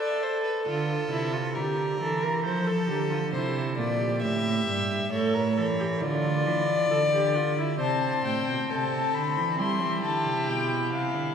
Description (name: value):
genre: classical, baroque-style fugue for string quartet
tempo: 67 BPM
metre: 4/4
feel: straight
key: D minor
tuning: A4 = 444 Hz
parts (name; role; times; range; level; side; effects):
- rich violin; second line; 0.0-11.3 s; G4 to E5; -29 LUFS; left 4 dB; none
- rich viola; accompaniment; 0.0-11.3 s; C4 to C5; -30 LUFS; right 2 dB; none
- dark cello; bass; 0.7-11.3 s; G2 to G3; -28 LUFS; right 3 dB; none
- dark violin; melody; 7.8-11.3 s; F5 to C6; -28 LUFS; left 6 dB; none
room: wet cathedral reverb, RT60 4.0 s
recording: none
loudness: -24 LUFS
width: side -7 dB against mid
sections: 0.0-11.3 A section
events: none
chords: 0.0 Am; 0.7 Dm; 2.4 F; 4.2 A7; 6.0 Dm; 7.8 Am; 9.6 C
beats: | 0.67 1.56 2.45 3.34 | 4.23 5.13 6.02 6.91 | 7.80 8.70 9.59 10.48